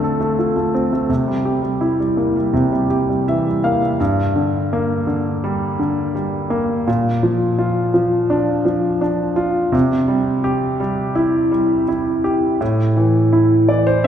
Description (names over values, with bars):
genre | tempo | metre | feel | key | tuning
folk | 84 BPM | 4/4 | straight | unclear | A4 = 440 Hz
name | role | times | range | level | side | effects
warm concert grand piano | solo | 0.0-14.1 s | G2 to F5 | -15 LUFS | equal | none
room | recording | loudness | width
wet church reverb, RT60 3.2 s | recorded in a church or concert hall, nothing above 11.0 kHz | -15 LUFS | side -9 dB against mid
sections
0.0-4.0 A section; 4.0-14.1 B section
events
none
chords
0.0 Dm7; 1.1 C7; 4.0 Gm; 6.9 Bb; 9.7 C; 12.6 Am